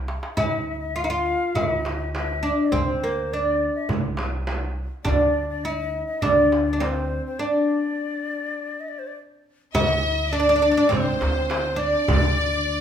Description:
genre	Arabic maqam ensemble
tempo	102 BPM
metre	4/4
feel	straight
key	unclear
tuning	A4 = 440 Hz
part	upright bass	bass	0.0-12.8 s	C2 to D2	-28 LUFS	equal	none
part	darbuka	percussion	0.1-12.7 s	none	-31 LUFS	right 2 dB	none
part	breathy bright ney	second line	0.3-12.8 s	C5 to F5	-28 LUFS	left 4 dB	none
part	oud	melody	0.4-12.8 s	Bb3 to F4	-22 LUFS	equal	none
part	frame drum	percussion	0.4-12.2 s	none	-29 LUFS	right 2 dB	none
part	bright studio violin section	second line	9.7-12.8 s	C5 to E5-50c	-28 LUFS	right 1 dB	none
room	moderate large studio reverb, RT60 1.1 s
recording	band playing live in one room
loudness	-20 LUFS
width	side -8 dB against mid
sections	0.0-9.7 A section; 9.7-12.8 B section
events	drum fill 0.0-0.4; break 7.4-9.7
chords	none

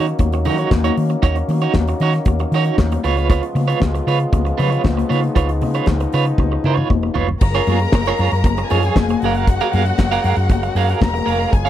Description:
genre	disco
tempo	116 BPM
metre	4/4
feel	straight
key	F# major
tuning	A4 = 444 Hz
part	electric guitar at the edge of break-up	accompaniment	0.0-11.7 s	D#4 to E#5	-21 LUFS	right 9 dB	tremolo
part	warm French horn section	sustained chords	0.0-11.7 s	C#3 to G#4	-25 LUFS	left 2 dB	none
part	hollow-body short-scale fingered electric bass	bass	0.0-11.7 s	E1 to D#3	-19 LUFS	equal	none
part	damped 70s drum kit	drums	0.1-11.7 s	crash cymbal, handclaps, hi-hat, kick drum, snare drum, toms	-17 LUFS	equal	none
part	congas	percussion	0.2-11.3 s	none	-25 LUFS	left 8 dB	none
part	dark studio violin section	second line	7.4-11.7 s	F#4 to A#5	-22 LUFS	left 4 dB	none
room	little or no reverb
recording	dry, close 1970s-style studio recording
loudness	-15 LUFS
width	side -12 dB against mid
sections	0.0-7.4 A section; 7.4-11.7 B section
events	drum fill 6.4-7.4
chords	0.0 D#m7; 3.0 C#7; 7.4 A#m7/F#; 9.2 F#maj9

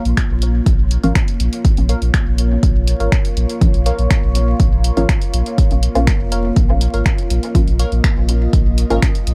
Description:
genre	dub techno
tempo	122 BPM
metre	4/4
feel	straight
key	Bb minor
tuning	A4 = 440 Hz
part	deep dark ambient pad	sustained chords	0.0-9.3 s	Bb3 to Eb5	-27 LUFS	equal	chorus, built-in reverb, sidechain pumping
part	wavetable chord stab	riff	0.0-9.0 s	Bb4 to F5	-30 LUFS	equal	sidechain pumping, dub echo
part	warm sub bass	bass	0.1-9.3 s	F1 to Bb1	-19 LUFS	equal	sidechain pumping
part	deep house drum kit	drums	0.1-9.3 s	finger snaps, hi-hat	-27 LUFS	equal	none
part	electronic kick drum	drums	0.2-9.1 s	none	-18 LUFS	equal	none
part	filtered dub chord stab	stabs	1.0-9.1 s	F3 to F4	-25 LUFS	equal	phaser, sidechain pumping, dub echo
room	little or no reverb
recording	vinyl crackle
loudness	-16 LUFS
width	mono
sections	0.0-9.3 A section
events	filter sweep on synth stab 0.0-9.3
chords	0.0 Bbm

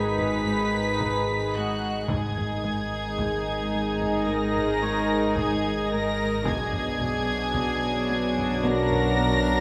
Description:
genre	cinematic, suspense film score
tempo	55 BPM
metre	4/4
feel	straight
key	G# minor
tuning	A4 = 440 Hz
part	rich studio violin section	melody	0.0-9.6 s	F#6 to B6	-35 LUFS	equal	none
part	warm studio violin section	second line	0.0-9.6 s	F#4 to B4	-32 LUFS	equal	none
part	warm studio viola section	accompaniment	0.0-9.6 s	D4 to G#4	-33 LUFS	equal	none
part	clear trombone section	sustained chords	0.0-9.6 s	F#2 to F#3	-37 LUFS	equal	none
part	deep dark ambient pad	sustained chords	0.0-9.6 s	B3 to G#5	-37 LUFS	equal	none
part	warm French horn section	sustained chords	0.0-9.6 s	G#3 to D#4	-37 LUFS	equal	none
part	warm studio cello section	riff	0.0-9.5 s	G#2 to B3	-38 LUFS	equal	none
part	dark studio cello section	bass	0.0-9.6 s	G#2 to B2	-34 LUFS	equal	none
part	dark studio double bass section	bass	0.0-9.6 s	G#1 to B1	-37 LUFS	equal	none
part	analog drone	drone	0.0-9.6 s	G#1 to B1	-38 LUFS	equal	chorus
part	concert harp	texture	0.0-8.1 s	C#5 to C#6	-42 LUFS	equal	none
part	taiko ensemble	drums	0.2-9.4 s	none	-37 LUFS	equal	none
room	wet concert hall reverb, RT60 2.3 s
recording	none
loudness	-25 LUFS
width	mono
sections	0.0-9.6 A section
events	none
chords	0.0 G#m; 6.5 Bm

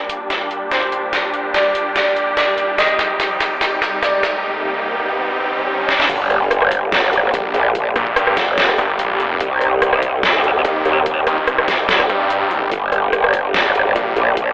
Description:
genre	heavy wobble dubstep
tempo	145 BPM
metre	4/4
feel	swing 53% on 16ths, half-time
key	G phrygian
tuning	A4 = 440 Hz
part	supersaw chords	sustained chords	0.0-14.5 s	Bb2 to G4	-21 LUFS	equal	vintage 12-bit sampler grit, sidechain pumping, low-pass filter
part	riser and sub drop	sound effects	0.0-7.8 s	none	-26 LUFS	right 1 dB	none
part	dubstep drum kit	drums	0.1-14.5 s	crash cymbal, hi-hat, rim click, snare drum	-18 LUFS	equal	overdrive, high-pass filter on hats, high-pass filter on snare, high-pass filter on cymbals
part	bright baby grand piano	melody	0.7-4.4 s	C5 to Eb5	-21 LUFS	equal	analog delay
part	growl bass	bass	6.1-14.5 s	F1 to Eb2	-16 LUFS	equal	chorus, overdrive
part	electronic kick drum	drums	6.1-14.5 s	none	-28 LUFS	equal	overdrive
part	snarling distorted saw bass	bass	7.3-14.1 s	F1 to G2	-18 LUFS	equal	distortion, overdrive
room	wet plate reverb, RT60 1.9 s, digital ambience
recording	dreamy mix soaked in reverb, telephone sound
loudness	-14 LUFS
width	side -21 dB against mid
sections	0.0-6.1 A section; 6.1-14.5 B section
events	build-up 0.0-6.1; drum fill 0.0-4.4, 5.9; riser 0.0-6.1; filter sweep on supersaw synth 0.0-6.1; drop 6.1-14.5; impact 6.1-7.8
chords	0.0 Gm; 2.8 Cm; 6.1 Gm; 9.4 Cm; 12.7 Gm

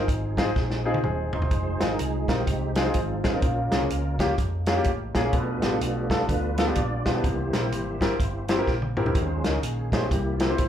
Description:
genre	uptempo gospel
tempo	126 BPM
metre	4/4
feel	swing 62% on 8ths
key	F minor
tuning	A4 = 443 Hz
part	mellow French horn section	sustained chords	0.0-10.7 s	Db3 to Eb4	-41 LUFS	equal	none
part	tonewheel organ	sustained chords	0.0-10.7 s	Db3 to D5	-30 LUFS	right 3 dB	chorus vibrato, slow rotary speaker
part	fingered electric bass	bass	0.0-10.7 s	Eb1 to F2	-30 LUFS	equal	none
part	warm soul drum kit	drums	0.1-10.7 s	hi-hat, kick drum, snare drum, toms	-26 LUFS	equal	none
part	clear upright piano	accompaniment	0.4-10.7 s	Bb2 to C5	-27 LUFS	left 2 dB	slapback echo
room	light reverb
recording	live gig heard through the venue's PA, club reverb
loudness	-22 LUFS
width	side -10 dB against mid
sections	0.0-1.5 A section; 1.5-10.7 B section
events	drum fill 0.6-1.5, 8.7-9.2; tonewheel organ solo 1.5-10.7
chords	0.0 Fm7; 3.4 Bbm7; 5.3 G7; 7.2 C7; 9.2 Eb7sus4; 10.1 C7

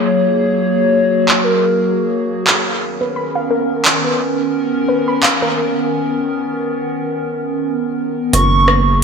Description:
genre	IDM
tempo	87 BPM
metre	4/4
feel	swing 56% on 16ths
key	unclear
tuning	A4 = 440 Hz
part	warbly nostalgic lead	melody	0.0-2.5, 8.3-9.0 s	A#4 to C#6	-16 LUFS	left 1 dB	chorus, cassette tape, ping-pong delay
part	warbly tape-like pad	sustained chords	0.0-9.0 s	D#3 to A#4	-18 LUFS	equal	chorus, built-in reverb, phaser, vintage 12-bit sampler grit
part	booming analog drum machine	drums	1.3-8.8 s	handclaps, hi-hat, rim click	-16 LUFS	right 1 dB	low-pass filter on hats, low-pass filter on snare, low-pass filter on room, gated reverb, digital delay
part	warbly dusty pluck	arpeggios	3.0-5.5 s	A#4 to B5	-20 LUFS	left 2 dB	chorus, digital delay
part	deep acid bass	bass	8.3-9.0 s	F#1	-14 LUFS	right 1 dB	tube saturation
room	wet plate reverb, RT60 2.3 s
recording	bright 1980s-style digital production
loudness	-14 LUFS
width	side -5 dB against mid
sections	0.0-8.3 A section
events	break 5.6-8.3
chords	0.0 F#add9; 2.5 Bmaj9; 8.3 F#maj9

